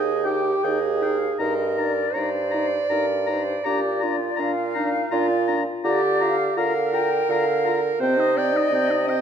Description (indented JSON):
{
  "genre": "classical, slow romantic movement for wind quintet",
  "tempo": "82 BPM",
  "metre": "3/4",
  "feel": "uneven beats, rubato",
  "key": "unclear",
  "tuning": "A4 = 438 Hz",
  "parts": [
    { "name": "mellow silver concert flute", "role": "melody", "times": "0.0-9.2 s", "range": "Bb4 to G5", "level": "-28 LUFS", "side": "left 8 dB", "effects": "none" },
    { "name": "clear oboe", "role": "second line", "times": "0.0-9.2 s", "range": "Eb5 to Bb5", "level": "-30 LUFS", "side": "left 7 dB", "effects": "none" },
    { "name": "mellow French horn", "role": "accompaniment", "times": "0.0-9.2 s", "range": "C4 to F4", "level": "-30 LUFS", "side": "left 2 dB", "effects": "none" },
    { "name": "warm clarinet", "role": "accompaniment", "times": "0.0-9.2 s", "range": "Eb4 to Eb5", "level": "-23 LUFS", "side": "right 5 dB", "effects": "none" },
    { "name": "warm bassoon", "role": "bass", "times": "0.0-9.2 s", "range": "Eb2 to D3", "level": "-26 LUFS", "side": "equal", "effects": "none" }
  ],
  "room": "wet recital hall reverb, RT60 1.8 s",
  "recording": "dark, warm production",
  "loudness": "-20 LUFS",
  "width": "side -8 dB against mid",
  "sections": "0.0-9.2 A section",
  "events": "none",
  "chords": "0.0 Eb; 1.4 Eb/G; 3.7 Bb; 5.8 Bb/D; 8.0 Cm",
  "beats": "0.64 | 1.40 2.16 2.91 | 3.66 4.39 5.12 | 5.85 6.58 7.29 | 8.00 8.72"
}